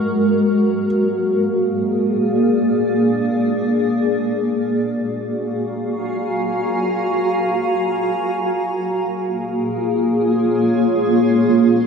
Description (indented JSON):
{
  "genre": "ambient",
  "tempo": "free time",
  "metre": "none",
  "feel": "none",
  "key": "unclear",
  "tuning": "A4 = 440 Hz",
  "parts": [
    { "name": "granular cloud pad", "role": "sustained chords", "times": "0.0-11.9 s", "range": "Ab3 to Bb5", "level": "-16 LUFS", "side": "equal", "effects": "built-in reverb" },
    { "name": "felt-muted upright piano", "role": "arpeggios", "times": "0.0-0.9 s", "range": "none", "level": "barely audible", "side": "none", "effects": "none" }
  ],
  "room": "wet cathedral reverb, RT60 6.3 s",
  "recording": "dark, warm production",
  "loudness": "-16 LUFS",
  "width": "side -6 dB against mid",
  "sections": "0.0-11.9 A section",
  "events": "none",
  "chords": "0.0 Absus2; 0.8 Bb7; 4.6 Gbmaj9; 8.5 Bbm7",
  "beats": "free time"
}